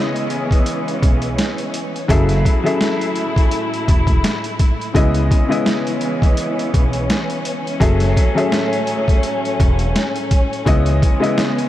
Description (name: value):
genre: hip hop, boom-bap hip-hop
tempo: 84 BPM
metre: 4/4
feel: swing 55% on 16ths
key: C# minor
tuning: A4 = 440 Hz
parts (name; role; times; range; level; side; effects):
- warm upright piano; accompaniment; 0.0-11.7 s; C#3 to E5; -21 LUFS; left 2 dB; high-pass filter, low-pass filter
- warm studio string section; sustained chords; 0.0-11.7 s; A2 to E4; -23 LUFS; equal; high-pass filter, low-pass filter
- boom bap sampler-style drum kit; drums; 0.2-11.7 s; hi-hat, kick drum, snare drum; -18 LUFS; equal; overdrive, vintage 12-bit sampler grit
- upright bass; bass; 1.0-11.0 s; E1 to C#2; -19 LUFS; equal; none
room: moderate huge ambient reverb, RT60 8.9 s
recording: dreamy mix soaked in reverb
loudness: -15 LUFS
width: side -13 dB against mid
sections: 0.0-11.7 A section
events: none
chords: 0.0 C#m9; 2.1 F#m9; 4.9 C#m9; 7.8 F#m9; 10.7 C#m9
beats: 0.66 1.38 | 2.09 2.81 3.52 4.24 | 4.95 5.66 6.38 7.09 | 7.81 8.52 9.23 9.95 | 10.66 11.38